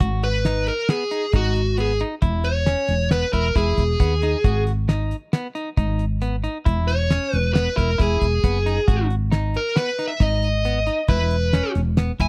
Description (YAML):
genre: progressive instrumental, band music in an uneven meter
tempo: 135 BPM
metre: 5/4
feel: straight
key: G# minor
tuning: A4 = 440 Hz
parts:
  - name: clean electric guitar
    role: arpeggios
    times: 0.0-12.3 s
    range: B3 to F#4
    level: -32 LUFS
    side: equal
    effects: none
  - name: woody fretless electric bass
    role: bass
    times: 0.0-12.3 s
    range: E1 to D#2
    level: -24 LUFS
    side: equal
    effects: none
  - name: damped 70s drum kit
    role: drums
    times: 0.0-12.3 s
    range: hi-hat, kick drum, snare drum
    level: -21 LUFS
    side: equal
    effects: none
  - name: dark smooth lead guitar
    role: melody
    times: 0.2-12.3 s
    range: F#4 to G#5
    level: -25 LUFS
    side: equal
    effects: overdrive
room: small room reverb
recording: dry, close 1970s-style studio recording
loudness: -21 LUFS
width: mono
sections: 0.0-12.3 A section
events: lead electric guitar solo 0.0-12.3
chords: 0.0 G#m; 2.2 E; 4.4 G#m; 6.7 E; 8.9 G#m; 11.1 E5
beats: | 0.01 0.46 0.90 1.34 1.79 | 2.23 2.67 3.12 3.56 4.01 | 4.45 4.89 5.34 5.78 6.22 | 6.67 7.11 7.55 7.99 8.44 | 8.88 9.32 9.77 10.21 10.65 | 11.09 11.54 11.98